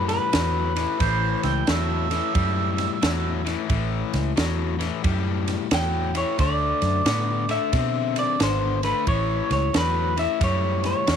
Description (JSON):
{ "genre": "electric blues shuffle", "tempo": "89 BPM", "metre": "4/4", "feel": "swing 64% on 8ths", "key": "A mixolydian", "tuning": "A4 = 440 Hz", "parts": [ { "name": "electric guitar through a small old amp", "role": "melody", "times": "0.0-11.2 s", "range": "B4 to G5", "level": "-25 LUFS", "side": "equal", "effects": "none" }, { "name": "crunchy overdriven guitar", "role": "riff", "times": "0.0-11.2 s", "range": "A2 to C4", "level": "-27 LUFS", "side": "left 12 dB", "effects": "none" }, { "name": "vintage muted fingered electric bass", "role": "bass", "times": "0.0-11.2 s", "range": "G#1 to B2", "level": "-26 LUFS", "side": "right 2 dB", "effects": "none" }, { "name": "compact cocktail drum kit", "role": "drums", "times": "0.1-11.2 s", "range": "kick drum, ride cymbal, snare drum", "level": "-27 LUFS", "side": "right 1 dB", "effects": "none" }, { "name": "warm harmonica", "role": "second line", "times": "1.0-3.7 s", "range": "C5 to G5", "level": "-28 LUFS", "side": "right 14 dB", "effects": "overdrive" } ], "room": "light reverb, small room reverb", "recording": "1960s-style stereo with parts hard left and right", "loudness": "-21 LUFS", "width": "side -8 dB against mid", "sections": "0.0-11.2 A section", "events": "none", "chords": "0.0 A7sus2; 6.4 D7sus2; 9.1 A7" }